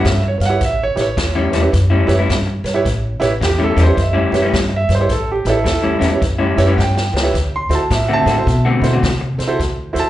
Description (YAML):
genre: electric blues shuffle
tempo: 107 BPM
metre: 4/4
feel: swing 64% on 8ths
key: A mixolydian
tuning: A4 = 440 Hz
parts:
  - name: warm concert grand piano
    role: accompaniment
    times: 0.0-10.1 s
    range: E4 to C6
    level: -18 LUFS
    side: right 3 dB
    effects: slapback echo
  - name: electric guitar through a small old amp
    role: riff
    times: 0.0-9.2 s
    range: A2 to F#4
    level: -18 LUFS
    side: left 3 dB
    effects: slapback echo
  - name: swinging big-band drum kit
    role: drums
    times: 0.0-10.0 s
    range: hi-hat, kick drum, snare drum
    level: -22 LUFS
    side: equal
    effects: slapback echo
  - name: upright bass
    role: bass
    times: 0.1-10.1 s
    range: A1 to C3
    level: -18 LUFS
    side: equal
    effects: none
room: light reverb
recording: live gig heard through the venue's PA, club reverb, nothing above 10.8 kHz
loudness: -13 LUFS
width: side -14 dB against mid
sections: 0.0-10.1 A section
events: drum fill 6.8-7.3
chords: 0.0 A7; 7.3 D7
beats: 0.04 | 0.61 1.17 1.73 2.29 | 2.85 3.42 3.98 4.54 | 5.10 5.66 6.22 6.78 | 7.34 7.91 8.46 9.03 | 9.59